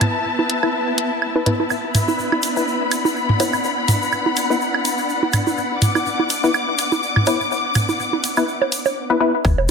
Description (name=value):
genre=minimal techno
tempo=124 BPM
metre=4/4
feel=swing 56% on 16ths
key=unclear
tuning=A4 = 441 Hz
part: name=electronic hi-hat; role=drums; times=0.0-9.7 s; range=none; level=-22 LUFS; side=equal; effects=none
part: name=electronic toms, claves and bongos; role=percussion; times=0.0-9.7 s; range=none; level=-21 LUFS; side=right 3 dB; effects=ping-pong delay
part: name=dark symphonic string section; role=texture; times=0.0-9.0 s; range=B3 to D6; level=-22 LUFS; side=left 2 dB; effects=sidechain pumping
part: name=flickering grainy texture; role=texture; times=0.0-9.0 s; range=B3 to B4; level=-28 LUFS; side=equal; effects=built-in reverb, sidechain pumping
part: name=filtered dub chord stab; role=stabs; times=0.6-9.3 s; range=B3 to B4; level=-21 LUFS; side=left 4 dB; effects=analog chorus, ping-pong delay
part: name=egg shaker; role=percussion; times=1.7-9.6 s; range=none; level=-30 LUFS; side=right 2 dB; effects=none
part: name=punchy sub bass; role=bass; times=9.4-9.7 s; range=E1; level=-20 LUFS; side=equal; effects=sidechain pumping
part: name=electronic kick drum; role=drums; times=9.4-9.6 s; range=none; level=-17 LUFS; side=equal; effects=none
room=moderate digital room reverb, RT60 0.9 s, digital ambience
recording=none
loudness=-17 LUFS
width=side -5 dB against mid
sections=0.0-9.4 A section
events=filter sweep on synth stab 0.0-9.4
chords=0.0 E5